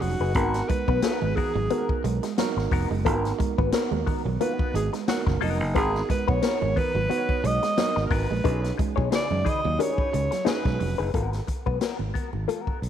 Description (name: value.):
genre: funk.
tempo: 89 BPM.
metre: 4/4.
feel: swing 56% on 16ths.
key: G# minor.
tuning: A4 = 441 Hz.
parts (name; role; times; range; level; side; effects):
breathy alto saxophone; melody; 0.0-11.1 s; D#4 to D#5; -28 LUFS; equal; none.
clean electric guitar; accompaniment; 0.0-12.9 s; B3 to C#5; -30 LUFS; left 10 dB; wah.
electric guitar at the edge of break-up; riff; 0.0-11.0 s; F#3 to B3; -34 LUFS; right 10 dB; wide subtle chorus.
tine electric piano; stabs; 0.0-11.0 s; C#3 to C#5; -32 LUFS; right 11 dB; slapback echo.
fingered electric bass; bass; 0.0-12.9 s; E#1 to F#2; -27 LUFS; equal; none.
swinging big-band drum kit; drums; 0.0-12.9 s; hi-hat, kick drum, snare drum; -28 LUFS; left 2 dB; none.
congas; percussion; 0.0-12.7 s; none; -37 LUFS; right 10 dB; none.
room: light reverb, small room reverb.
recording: 1960s-style stereo with parts hard left and right.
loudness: -22 LUFS.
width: side -9 dB against mid.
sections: 0.0-11.1 A section; 11.1-12.9 B section.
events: alto saxophone solo 0.0-11.1.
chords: 0.4 G#m9; 8.4 B6; 11.1 G#m9.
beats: | 0.36 1.03 1.71 2.38 | 3.06 3.73 4.41 5.08 | 5.76 6.43 7.10 7.78 | 8.45 9.12 9.79 10.47 | 11.14 11.81 12.48.